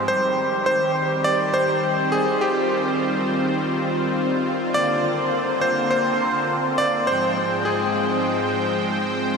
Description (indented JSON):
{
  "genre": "synthwave",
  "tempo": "103 BPM",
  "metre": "4/4",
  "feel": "straight",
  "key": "C minor",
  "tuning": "A4 = 440 Hz",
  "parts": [
    { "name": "soft supersaw", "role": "sustained chords", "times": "0.0-9.4 s", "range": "Ab2 to G5", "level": "-21 LUFS", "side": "equal", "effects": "phaser" },
    { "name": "bright electric grand piano", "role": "melody", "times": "0.1-8.5 s", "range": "G4 to D5", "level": "-23 LUFS", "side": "equal", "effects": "ping-pong delay" }
  ],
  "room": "wet huge ambient reverb, RT60 7.8 s",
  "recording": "dreamy mix soaked in reverb, lossy compression artefacts",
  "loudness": "-19 LUFS",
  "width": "side -5 dB against mid",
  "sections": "0.1-9.4 A section",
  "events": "none",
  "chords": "0.1 Cm; 4.8 Bbadd9; 7.1 Fmadd9/Ab"
}